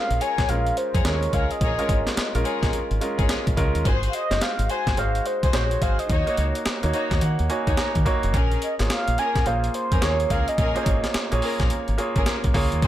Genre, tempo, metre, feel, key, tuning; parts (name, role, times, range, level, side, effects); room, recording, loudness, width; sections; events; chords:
R&B, new jack swing; 107 BPM; 4/4; swing 63% on 16ths; Bb minor; A4 = 440 Hz
mellow horn-like synth lead; melody; 0.0-11.3 s; C5 to Ab5; -27 LUFS; equal; chorus, ping-pong delay
warm concert grand piano; accompaniment; 0.0-12.8 s; Ab3 to Bb5; -28 LUFS; right 2 dB
deep dub fingered electric bass; bass; 0.1-12.9 s; F1 to Eb3; -25 LUFS; equal
breakbeat sampler-style drum kit; drums; 0.1-12.9 s; hi-hat, kick drum, snare drum; -25 LUFS; equal
warm chamber string section; stabs; 0.2-12.9 s; Db4 to Db5; -30 LUFS; left 4 dB
little or no reverb; -20 LUFS; side -12 dB against mid
0.0-12.9 A section
grand piano fill 6.7-8.3
0.0 Bbm7; 3.9 Ab7; 6.1 Ebm7; 8.3 Bbm7